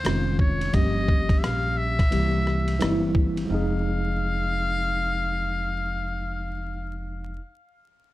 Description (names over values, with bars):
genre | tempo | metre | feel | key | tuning
hip hop, jazz-hop | 87 BPM | 4/4 | swing 63% on 16ths | F minor | A4 = 440 Hz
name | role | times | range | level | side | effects
trumpet with metal mute | melody | 0.0-7.0 s | C5 to F5 | -29 LUFS | left 2 dB | analog delay
tine electric piano | accompaniment | 0.0-7.4 s | Eb3 to Ab4 | -28 LUFS | equal | overdrive, fast stereo tremolo
upright bass | bass | 0.0-7.4 s | F1 to C2 | -28 LUFS | equal | none
boom bap sampler-style drum kit | drums | 0.0-3.5 s | hi-hat, kick drum, ride cymbal, rim click | -24 LUFS | equal | none
room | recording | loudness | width
moderate studio ambience, RT60 0.5 s | dark, warm production, vinyl crackle | -22 LUFS | side -16 dB against mid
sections
0.0-3.5 A section; 3.5-6.3 B section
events
none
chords
0.0 Dbmaj9; 0.7 Gm7b5; 2.1 C7; 3.5 Fm7